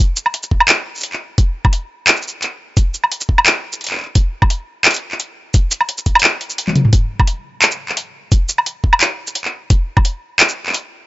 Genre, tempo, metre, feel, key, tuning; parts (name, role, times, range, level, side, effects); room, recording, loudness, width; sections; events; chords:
drum and bass; 173 BPM; 4/4; swing 53% on 16ths, half-time
drum and bass drum kit; drums; 0.2-10.8 s; handclaps, hi-hat, shaker, toms, woodblock; -13 LUFS; equal
electronic kick drum; drums; 0.5-10.0 s; -13 LUFS; equal
little or no reverb; dry, gritty hardware recording, nothing above 7.7 kHz; -14 LUFS; side -18 dB against mid
0.0-11.1 A section
drum fill 6.7